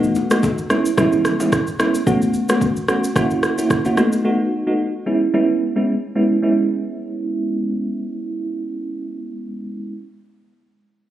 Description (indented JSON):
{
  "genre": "afrobeats",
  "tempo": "110 BPM",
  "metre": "4/4",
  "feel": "swing 55% on 16ths",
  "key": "C# minor",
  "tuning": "A4 = 437 Hz",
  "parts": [
    { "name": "bell-like FM electric piano", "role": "accompaniment", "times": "0.0-9.9 s", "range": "G#3 to F#4", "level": "-18 LUFS", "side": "right 1 dB", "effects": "chorus, tremolo, low-pass filter" },
    { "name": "afro-pop drum kit", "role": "drums", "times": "0.0-4.2 s", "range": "kick drum, rim click, shaker", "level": "-21 LUFS", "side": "equal", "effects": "none" },
    { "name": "bongos and congas", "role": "percussion", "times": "0.2-1.9 s", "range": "none", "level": "-28 LUFS", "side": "left 3 dB", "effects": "none" }
  ],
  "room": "light reverb",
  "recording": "recorded on a phone in the room, club reverb",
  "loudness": "-17 LUFS",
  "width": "side -12 dB against mid",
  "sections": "0.0-6.4 A section; 6.4-10.8 B section",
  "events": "filter sweep on FM electric piano 0.0-6.4",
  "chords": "0.0 B7; 0.7 C#m7; 2.1 A69; 3.2 F#7; 4.0 B7; 5.1 C#m7",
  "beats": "0.43 0.97 1.52 | 2.06 2.61 3.16 3.70 | 4.25 4.79 5.34 5.88 | 6.43 6.97 7.52 8.06 | 8.61 9.16 9.70"
}